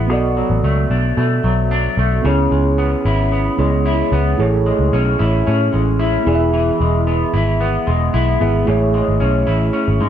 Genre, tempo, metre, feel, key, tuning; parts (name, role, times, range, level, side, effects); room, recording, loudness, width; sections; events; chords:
indie pop, bedroom pop; 112 BPM; 4/4; straight; A4 = 439 Hz
electric guitar through a small old amp; accompaniment; 0.0-10.1 s; A2 to E4; -19 LUFS; left 2 dB; wide subtle chorus, vibrato effect
mellow tine electric piano; accompaniment; 0.0-10.1 s; A3 to E5; -20 LUFS; right 4 dB; fast stereo tremolo, cassette tape
vintage muted picked electric bass; bass; 0.0-10.1 s; E1 to B2; -17 LUFS; equal
light reverb; -14 LUFS; side -10 dB against mid
0.0-10.1 A section
0.1 Bm7; 2.2 C#m7; 4.4 Amaj7; 6.3 E; 8.7 Amaj7